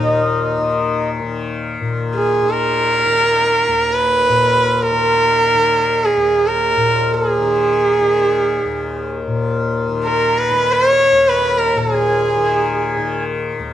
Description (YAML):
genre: indian classical, Hindustani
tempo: free time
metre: none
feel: none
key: unclear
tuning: A4 = 436 Hz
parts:
  - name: clear sarangi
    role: melody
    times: 0.0-13.1 s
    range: Eb4 to Db5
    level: -14 LUFS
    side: right 2 dB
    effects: none
  - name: pedal harmonium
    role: second line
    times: 0.0-1.1, 10.2-13.2 s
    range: Db5 to Cb6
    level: -22 LUFS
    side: left 2 dB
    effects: none
  - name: tanpura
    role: drone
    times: 0.0-13.7 s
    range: Eb2 to Eb3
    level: -20 LUFS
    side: left 4 dB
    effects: none
room: moderate studio reverb, RT60 0.7 s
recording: dark, warm production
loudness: -14 LUFS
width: side -11 dB against mid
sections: 0.0-1.8 A section; 1.8-13.7 A section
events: none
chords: none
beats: free time